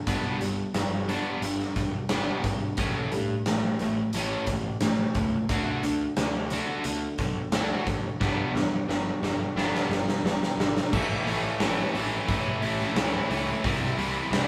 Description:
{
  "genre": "classic rock",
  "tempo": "88 BPM",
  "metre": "4/4",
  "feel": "straight",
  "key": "A mixolydian",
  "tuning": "A4 = 440 Hz",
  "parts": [
    { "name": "distorted electric guitar", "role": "riff", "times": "0.0-14.5 s", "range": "A2 to F#4", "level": "-31 LUFS", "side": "equal", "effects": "distortion" },
    { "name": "fuzz picked electric bass", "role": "bass", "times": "0.1-14.5 s", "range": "E1 to G2", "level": "-35 LUFS", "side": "equal", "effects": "overdrive" },
    { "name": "big rock drum kit", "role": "drums", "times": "0.1-14.5 s", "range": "crash cymbal, hi-hat, kick drum, snare drum", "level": "-32 LUFS", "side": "equal", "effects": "none" }
  ],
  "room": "moderate stone room reverb, RT60 1.0 s",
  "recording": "band playing live in one room, small room reverb",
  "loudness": "-27 LUFS",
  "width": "mono",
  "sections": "0.0-10.9 A section; 10.9-14.5 B section",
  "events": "drum fill 8.2-10.9",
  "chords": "0.1 G; 2.8 A; 5.5 D; 8.2 G; 10.9 A; 13.6 C"
}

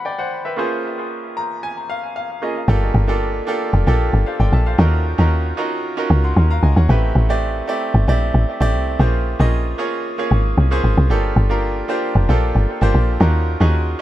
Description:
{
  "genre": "amapiano",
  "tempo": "114 BPM",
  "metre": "4/4",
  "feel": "straight",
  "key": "unclear",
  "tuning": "A4 = 440 Hz",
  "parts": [
    { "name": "bright baby grand piano", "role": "accompaniment", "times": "0.0-14.0 s", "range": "A3 to C6", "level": "-21 LUFS", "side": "right 1 dB", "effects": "low-pass filter, dub echo" },
    { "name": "woody log drum bass", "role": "bass", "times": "2.7-14.0 s", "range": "F1 to Eb2", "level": "-15 LUFS", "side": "equal", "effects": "none" }
  ],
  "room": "little or no reverb",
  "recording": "echo-heavy mix",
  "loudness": "-15 LUFS",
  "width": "side -14 dB against mid",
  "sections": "0.0-2.7 A section; 2.7-14.0 B section",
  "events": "grand piano fill 1.1-2.7; drop 2.7-14.0",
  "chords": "0.0 Am9; 0.6 Bbm9; 2.7 Gm9; 4.8 Ebm9; 6.9 Am9; 9.0 Bbm9; 11.1 Gm9; 13.2 Ebm9"
}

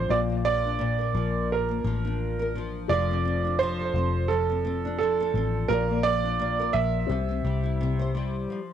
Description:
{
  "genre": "acoustic pop",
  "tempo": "86 BPM",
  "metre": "4/4",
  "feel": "swing 55% on 16ths",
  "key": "F major",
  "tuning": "A4 = 440 Hz",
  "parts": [
    { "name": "clear upright piano", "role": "melody", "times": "0.0-8.1 s", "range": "A4 to E5", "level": "-27 LUFS", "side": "right 7 dB", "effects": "cassette tape, analog delay" },
    { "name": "felt-muted upright piano", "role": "accompaniment", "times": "0.0-8.5 s", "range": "A3 to E5", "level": "-36 LUFS", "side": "left 14 dB", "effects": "cassette tape" },
    { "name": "nylon-string guitar", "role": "accompaniment", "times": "0.0-8.7 s", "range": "Bb2 to C5", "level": "-30 LUFS", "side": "left 2 dB", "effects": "double-tracked left and right, cassette tape" },
    { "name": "vintage muted fingered electric bass", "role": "bass", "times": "0.0-8.5 s", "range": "F1 to C2", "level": "-28 LUFS", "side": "left 2 dB", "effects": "transformer saturation" }
  ],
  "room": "light reverb, small room ambience",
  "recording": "home recording on cassette",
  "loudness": "-24 LUFS",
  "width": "side -9 dB against mid",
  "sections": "0.0-8.5 A section",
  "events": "none",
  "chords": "0.1 Bb; 2.9 F6; 5.7 Bb; 7.1 C"
}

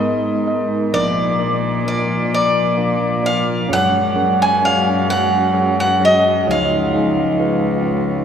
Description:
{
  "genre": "folk",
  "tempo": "43 BPM (dotted quarters)",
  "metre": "6/8",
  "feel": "straight",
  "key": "F# major",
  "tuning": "A4 = 445 Hz",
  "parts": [
    { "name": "picked acoustic archtop guitar", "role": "melody", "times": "0.0-8.2 s", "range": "D5 to G#5", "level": "-17 LUFS", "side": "equal", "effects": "none" },
    { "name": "mellow tine electric piano", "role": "accompaniment", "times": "0.0-8.2 s", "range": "F#1 to E#5", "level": "-21 LUFS", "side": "left 1 dB", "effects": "medium stereo tremolo" },
    { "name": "vibraphone with soft mallets", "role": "arpeggios", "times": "0.0-8.2 s", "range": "E#3 to A#4", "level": "-24 LUFS", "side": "right 2 dB", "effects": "none" },
    { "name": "warm cello", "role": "bass", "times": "0.0-8.2 s", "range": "C#2 to A#2", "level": "-22 LUFS", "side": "left 1 dB", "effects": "none" }
  ],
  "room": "wet cathedral reverb, RT60 7.2 s",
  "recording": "recorded in a church or concert hall",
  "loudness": "-14 LUFS",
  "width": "side -8 dB against mid",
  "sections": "0.0-8.2 A section",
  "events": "none",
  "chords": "0.0 G#madd9; 0.9 A#; 3.7 F#sus2; 6.5 C#add9"
}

